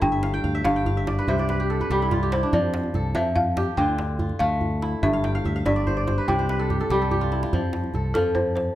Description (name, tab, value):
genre	west african traditional, West African string and xylophone music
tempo	96 BPM (dotted quarters)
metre	12/8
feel	straight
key	F lydian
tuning	A4 = 441 Hz
part	balafon	melody	0.0-8.7 s	A4 to G5	-26 LUFS	left 1 dB	none
part	kora	arpeggios	0.0-8.8 s	G2 to G5	-25 LUFS	equal	none
part	fingered electric bass	bass	0.0-8.7 s	G1 to F2	-26 LUFS	equal	none
part	djembe	percussion	0.0-8.7 s	none	-29 LUFS	right 1 dB	none
room	moderate recital hall reverb, RT60 1.7 s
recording	none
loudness	-21 LUFS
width	side -13 dB against mid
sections	0.0-7.5 A section; 7.5-8.8 B section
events	balafon solo 0.0-7.5; kora fill 0.1-2.5, 5.1-7.5; drum fill 7.2-7.5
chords	0.0 G5; 1.3 C; 2.5 F; 3.8 Dm; 5.0 G5; 6.3 C5; 7.5 F